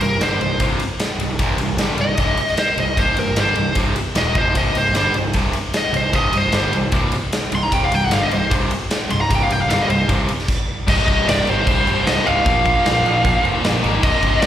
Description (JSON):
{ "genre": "hard rock", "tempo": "152 BPM", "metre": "4/4", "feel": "straight", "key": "C minor", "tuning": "A4 = 442 Hz", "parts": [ { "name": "smooth overdriven lead guitar", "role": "melody", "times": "0.0-14.5 s", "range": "Bb4 to C6", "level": "-19 LUFS", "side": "equal", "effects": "slapback echo" }, { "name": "high-gain distorted guitar", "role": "riff", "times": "0.0-14.5 s", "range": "C2 to Bb3", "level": "-22 LUFS", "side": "equal", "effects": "distortion, slapback echo" }, { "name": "fuzz picked electric bass", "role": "bass", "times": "0.0-14.5 s", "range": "C1 to C2", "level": "-23 LUFS", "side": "equal", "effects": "overdrive" }, { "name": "big rock drum kit", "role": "drums", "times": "0.0-14.5 s", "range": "crash cymbal, kick drum, ride cymbal, snare drum", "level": "-21 LUFS", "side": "equal", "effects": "none" } ], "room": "light reverb", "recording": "live gig heard through the venue's PA, recital hall reverb", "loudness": "-15 LUFS", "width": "side -11 dB against mid", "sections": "0.0-10.9 A section; 10.9-14.5 B section", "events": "lead electric guitar solo 0.0-10.9", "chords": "0.0 C5; 10.9 Cm; 12.5 Bb5" }